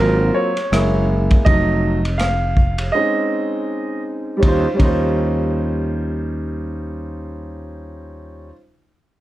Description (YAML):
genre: hip hop, jazz-hop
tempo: 81 BPM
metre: 4/4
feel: swing 58% on 16ths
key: unclear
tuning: A4 = 440 Hz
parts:
  - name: warm baby grand piano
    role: accompaniment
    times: 0.0-8.6 s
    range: Gb3 to F5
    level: -20 LUFS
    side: right 1 dB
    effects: none
  - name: sustaining fretless electric bass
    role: bass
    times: 0.0-8.5 s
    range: F1 to Eb2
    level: -21 LUFS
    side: equal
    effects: none
  - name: crunchy breakbeat drum kit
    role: drums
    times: 0.6-5.0 s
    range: hi-hat, kick drum, ride cymbal, rim click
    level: -19 LUFS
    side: equal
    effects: none
room: light reverb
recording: none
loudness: -16 LUFS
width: side -15 dB against mid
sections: 0.0-4.4 A section; 4.4-7.4 B section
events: grand piano solo 0.0-4.4; break 2.9-4.4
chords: 0.0 Ab13; 0.7 Gb9; 1.5 F7b9; 2.9 Abadd11; 4.4 Eb13